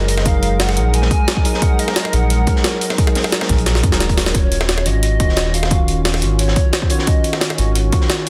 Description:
liquid drum and bass; 176 BPM; 4/4; straight; Eb minor; A4 = 441 Hz
hollow clarinet-like synth lead; melody; 0.0-7.7 s; Bb4 to Ab5; -28 LUFS; equal; phaser, analog chorus, cassette tape, tape echo
mellow tine electric piano; accompaniment; 0.0-8.3 s; Eb3 to Eb5; -25 LUFS; equal; tape echo
warm analog pad; sustained chords; 0.0-8.3 s; Ab3 to Bb4; -31 LUFS; equal; chorus, sidechain pumping
sub bass with octave; bass; 0.0-7.9 s; Eb1 to Gb2; -20 LUFS; equal
crunchy breakbeat drum kit; drums; 0.1-8.3 s; hi-hat, snare drum; -28 LUFS; equal; high-pass filter on hats, small room ambience, high-pass filter on snare, high-pass filter on room
jungle sampler-style drum kit; drums; 0.1-8.3 s; hi-hat, snare drum; -23 LUFS; equal; small room ambience
electronic kick drum; drums; 0.3-8.0 s; -19 LUFS; equal; overdrive, small room ambience
light reverb, digital ambience; dense, heavily limited modern master; -16 LUFS; mono
0.0-8.3 A section
drum fill 3.7-4.3
0.0 Gb69; 4.3 Ebm9

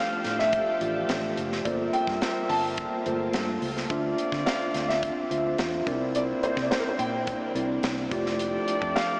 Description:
polished 1980s jazz-funk pop; 107 BPM; 4/4; straight; A4 = 438 Hz
dark baby grand piano; melody; 0.0-9.2 s; Bb4 to A5; -32 LUFS; equal; lush chorus, diffuse ambient delay
dark horn section; second line; 0.0-9.2 s; G3 to F5; -36 LUFS; equal
tine electric piano; accompaniment; 0.0-9.2 s; A3 to E5; -32 LUFS; equal; overdrive, lush chorus
string machine, full ensemble; sustained chords; 0.0-9.2 s; C3 to A4; -39 LUFS; equal; ensemble chorus
vintage muted fingered electric bass; bass; 0.2-8.9 s; F1 to D3; -39 LUFS; equal
crisp fusion drum kit; drums; 0.2-9.1 s; hi-hat, kick drum, snare drum; -35 LUFS; equal
wet huge ambient reverb, RT60 7.1 s; dreamy mix soaked in reverb, small speaker sound; -27 LUFS; mono
0.0-9.2 A section
0.0 F69; 1.7 Gm11; 3.9 Dm9; 5.9 C9; 8.1 F69

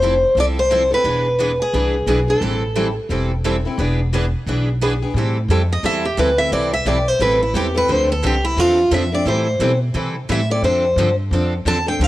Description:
acoustic string swing (jazz manouche); 175 BPM; 4/4; swing 59% on 8ths; A minor; A4 = 441 Hz
picked steel-string acoustic guitar; melody; 0.0-2.9, 5.7-12.1 s; E4 to A5; -18 LUFS; equal; cassette tape
picked steel-string acoustic guitar; accompaniment; 0.0-12.1 s; D3 to A4; -25 LUFS; left 4 dB; cassette tape
picked steel-string acoustic guitar; accompaniment; 0.0-12.1 s; D3 to B4; -25 LUFS; right 4 dB; cassette tape
upright bass; bass; 0.0-12.1 s; E1 to C3; -21 LUFS; equal
small room ambience; home recording on cassette; -16 LUFS; side -16 dB against mid
0.0-5.2 A section; 5.2-12.1 B section
steel-string acoustic guitar solo 5.2-12.1
0.0 Fmaj7; 1.1 E7; 2.4 Am7; 3.8 E7; 5.2 Am7; 7.9 Dm7; 9.3 Am7; 10.6 Dm7

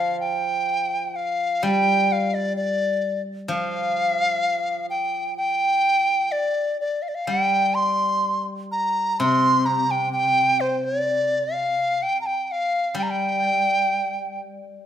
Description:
chinese traditional, Chinese chamber ensemble; 63 BPM; 2/4; rubato; G yu mode; A4 = 440 Hz
large dizi; melody; 0.0-14.4 s; C5 to C6; -21 LUFS; equal
steel-string zither; accompaniment; 0.0-14.9 s; C3 to G3; -28 LUFS; left 2 dB
moderate recital hall reverb, RT60 1.4 s; minimal, uncompressed stereo recording; -20 LUFS; side -10 dB against mid
0.0-14.9 A section

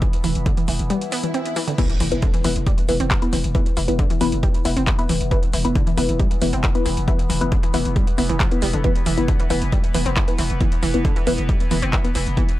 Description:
driving peak-time techno; 136 BPM; 4/4; straight; A4 = 440 Hz
analog pluck; riff; 0.0-12.4 s; D3 to C4; -26 LUFS; right 1 dB; chorus, tube saturation, sidechain pumping, analog delay
analog drone; drone; 0.0-12.6 s; E3 to B3; -31 LUFS; left 1 dB; chorus, phaser, sidechain pumping
electronic kick drum; drums; 0.0-12.5 s; -20 LUFS; equal
techno drum kit; drums; 0.0-12.6 s; crash cymbal, handclaps, hi-hat; -28 LUFS; equal; sidechain pumping on hats, sidechain pumping on cymbals
growling 808-style bass; bass; 0.2-12.4 s; E1; -24 LUFS; equal; overdrive, sidechain pumping, low-pass filter
swell and impact; sound effects; 1.0-3.5 s; -31 LUFS; equal
filtered dub chord stab; stabs; 1.8-12.5 s; B3 to B4; -25 LUFS; left 2 dB; phaser, sidechain pumping, analog delay
digital ambience; dry, gritty hardware recording, faint mains hum; -17 LUFS; side -15 dB against mid
0.0-1.8 A section; 1.8-12.6 B section
filter sweep on synth arpeggio sound 0.0-1.8; break 0.9-1.8; swell 1.0-1.8; drop 1.8-12.6; impact 1.8-3.5
0.0 E5

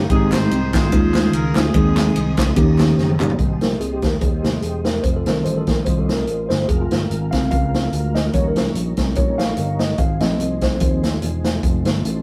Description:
uptempo gospel; 146 BPM; 4/4; swing 55% on 8ths; Ab major; A4 = 440 Hz
warm horn section; melody; 0.0-2.4 s; C4 to C5; -28 LUFS; equal
mellow tine electric piano; accompaniment; 0.0-11.0 s; Ab2 to F5; -23 LUFS; equal
tonewheel organ; sustained chords; 0.0-12.2 s; F3 to Eb6; -34 LUFS; equal; fast rotary speaker, chorus vibrato
sustaining fretless electric bass; bass; 0.0-12.2 s; Fb1 to Eb2; -24 LUFS; equal
swinging big-band drum kit; drums; 0.1-12.2 s; hi-hat, kick drum, ride cymbal, snare drum, toms; -22 LUFS; equal
group handclap; percussion; 0.3-3.3 s; -32 LUFS; equal
light reverb; rough rehearsal-room recording; -19 LUFS; mono
0.0-3.4 A section; 3.4-12.2 B section
drum fill 3.0-3.4; tine electric piano solo 3.4-12.2
0.1 Abmaj7; 0.9 Eb9sus4; 1.7 Ab/Eb; 2.6 Eb7; 3.4 Abmaj7; 5.0 F7; 6.7 Bbm7/F; 8.3 Eb7; 10.0 Ab6; 11.6 F7

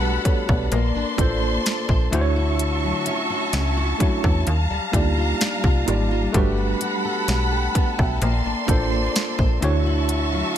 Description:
contemporary R&B; 64 BPM; 4/4; straight; A4 = 440 Hz
mellow tine electric piano; accompaniment; 0.0-10.6 s; A3 to B5; -26 LUFS; right 3 dB; medium stereo tremolo
warm studio string section; sustained chords; 0.0-10.6 s; G3 to C#6; -26 LUFS; equal
fingerpicked steel-string acoustic guitar; arpeggios; 0.0-10.6 s; D3 to C5; -29 LUFS; left 6 dB; digital delay
slap-like FM bass; bass; 0.0-10.4 s; G1 to E2; -22 LUFS; equal
trap drum kit; drums; 0.3-10.3 s; hi-hat, kick drum, rim click, snare drum; -22 LUFS; equal
digital ambience; -19 LUFS; side -10 dB against mid
0.0-10.6 A section
0.0 Gmaj9; 0.7 Bbmaj9; 2.1 Dmaj9; 4.5 Ebmaj9; 6.3 Gmaj9; 8.2 Bbmaj9; 9.6 Dmaj9

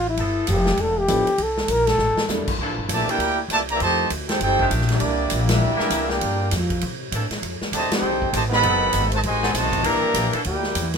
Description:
jazz, big band swing; 199 BPM; 4/4; swing 62% on 8ths; A4 = 440 Hz
mellow trombone; melody; 0.0-2.3 s; E4 to Bb4; -20 LUFS; left 1 dB
upright bass; bass; 0.0-11.0 s; E1 to C3; -25 LUFS; equal
warm saxophone section; sustained chords; 0.2-10.4 s; Eb3 to Bb4; -27 LUFS; left 1 dB
swinging big-band drum kit; drums; 0.2-11.0 s; crash cymbal, hi-hat, kick drum, ride cymbal, snare drum; -27 LUFS; equal
warm grand piano; accompaniment; 1.1-2.5 s; F3 to A4; -26 LUFS; equal
clear trumpet section; melody; 2.9-10.9 s; Bb3 to B5; -22 LUFS; right 2 dB
bright trombone section; second line; 2.9-10.9 s; Bb2 to G4; -27 LUFS; equal
light reverb; minimal, uncompressed stereo recording; -19 LUFS; side -6 dB against mid
0.0-2.6 A section; 2.6-11.0 B section
trombone solo 0.0-2.6; drum fill 2.0-2.3; band accent 5.5, 7.9
0.2 G13; 1.4 C13; 3.8 F13; 5.0 C9; 6.2 Gm7; 6.8 C13; 7.4 F13; 8.6 F#dim7; 9.8 C9

